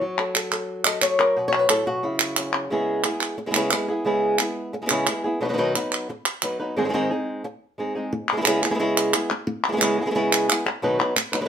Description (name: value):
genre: flamenco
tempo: 177 BPM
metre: 4/4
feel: straight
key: C# minor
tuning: A4 = 440 Hz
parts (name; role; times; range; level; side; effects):
- flamenco guitar; melody; 0.0-11.5 s; G#2 to D#5; -22 LUFS; equal; none
- palmas hand claps; percussion; 0.2-11.5 s; none; -22 LUFS; right 2 dB; none
room: moderate studio reverb, RT60 0.6 s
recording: minimal, uncompressed stereo recording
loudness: -20 LUFS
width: side -8 dB against mid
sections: 0.0-2.7 A section; 2.7-8.1 B section; 8.1-11.5 B section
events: nylon-string guitar solo 0.0-2.7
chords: 0.0 F#m; 1.4 B5; 2.0 C#m; 2.7 C#m7; 5.4 B; 6.8 G#; 8.1 C#m7; 10.8 B